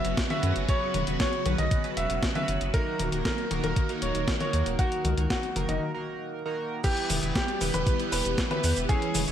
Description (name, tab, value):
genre	italo disco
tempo	117 BPM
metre	4/4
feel	straight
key	unclear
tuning	A4 = 441 Hz
part	clear baby grand piano	melody	0.0-9.2 s	D#4 to E5	-31 LUFS	equal	tape echo
part	phased string machine	sustained chords	0.0-9.3 s	C#3 to G#4	-34 LUFS	equal	ensemble chorus, phaser, vintage 12-bit sampler grit
part	chorused polysynth	stabs	0.0-9.3 s	D#3 to C#5	-34 LUFS	right 3 dB	none
part	round analog bass	bass	0.0-9.3 s	D#1 to F#2	-30 LUFS	equal	none
part	clean 12-bit digital drum machine	drums	0.0-9.3 s	cabasa, crash cymbal, hi-hat, snare drum, toms	-31 LUFS	left 2 dB	gated reverb
part	electronic kick drum	drums	0.2-9.0 s	none	-28 LUFS	equal	none
room	light reverb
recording	vinyl crackle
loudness	-25 LUFS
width	side -10 dB against mid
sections	0.0-6.8 A section; 6.8-9.3 B section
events	break 5.8-6.8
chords	0.0 F#sus4; 2.7 D#m; 6.8 Em